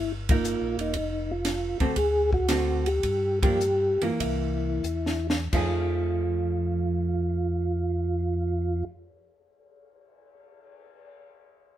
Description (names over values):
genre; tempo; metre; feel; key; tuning
soul jazz organ trio; 84-120 BPM; 4/4; swing 69% on 8ths; F mixolydian; A4 = 439 Hz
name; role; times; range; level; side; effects
percussive tonewheel organ; melody; 0.0-8.8 s; D#4 to A4; -28 LUFS; right 1 dB; slow rotary speaker, chorus vibrato
mellow tonewheel organ; bass; 0.0-8.8 s; E1 to G2; -29 LUFS; equal; slow rotary speaker
vintage hollow-body jazz guitar; accompaniment; 0.3-8.9 s; D3 to G#4; -31 LUFS; right 2 dB; none
compact cocktail drum kit; drums; 0.3-11.1 s; crash cymbal, cymbal swell, hi-hat, kick drum, ride cymbal, snare drum; -29 LUFS; equal; none
room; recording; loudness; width
light reverb; band playing live in one room; -24 LUFS; side -12 dB against mid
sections
0.0-5.5 A section; 5.5-11.2 B section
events
band accent 0.2, 3.3; slowing down 0.9-5.5; drum fill 4.8-5.5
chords
0.0 C7#9 (rootless); 0.9 F; 2.0 D7; 3.0 Gm7; 4.2 C7; 5.5 F7#9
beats
0.45 | 0.95 1.45 1.97 2.49 | 3.04 3.60 4.21 4.84 | 5.53 6.25 6.96 7.67 | 8.39 9.10 9.82 10.53